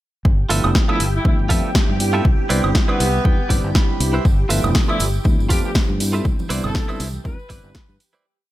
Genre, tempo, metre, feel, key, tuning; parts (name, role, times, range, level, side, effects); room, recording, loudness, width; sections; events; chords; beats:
filtered disco house; 120 BPM; 4/4; swing 56% on 16ths; G mixolydian; A4 = 440 Hz
string machine, full ensemble; sustained chords; 0.3-8.3 s; G4 to G5; -29 LUFS; right 1 dB; ensemble chorus, vintage 12-bit sampler grit, sidechain pumping
fingered electric bass; bass; 0.3-8.0 s; F1 to G2; -22 LUFS; equal; sidechain pumping
electronic kick drum; drums; 0.3-7.9 s; -17 LUFS; equal; overdrive
mellow tine electric piano; accompaniment; 0.5-7.7 s; F3 to E5; -26 LUFS; equal; phaser, sidechain pumping
direct-recorded clean electric guitar; riff; 0.5-8.3 s; E4 to B5; -26 LUFS; right 4 dB; sidechain pumping
punchy analog drum machine; drums; 0.5-8.1 s; hi-hat, snare drum, woodblock; -24 LUFS; equal; overdrive, sidechain pumping on hats, sidechain pumping on perc
warm horn section; melody; 0.9-8.0 s; B3 to B4; -27 LUFS; equal; sidechain pumping, digital delay
tambourine and congas; percussion; 4.2-8.2 s; -32 LUFS; right 3 dB; sidechain pumping on perc
little or no reverb; -16 LUFS; side -15 dB against mid
0.3-8.3 drop
drop 0.3-8.3; clean electric guitar fill 2.8-4.3; fade-out 5.6-8.3
0.3 G13; 2.3 Cmaj9; 4.3 G13; 6.3 Cmaj9
| 0.25 0.75 1.25 1.75 | 2.25 2.75 3.25 3.75 | 4.25 4.75 5.25 5.75 | 6.25 6.75 7.25 7.75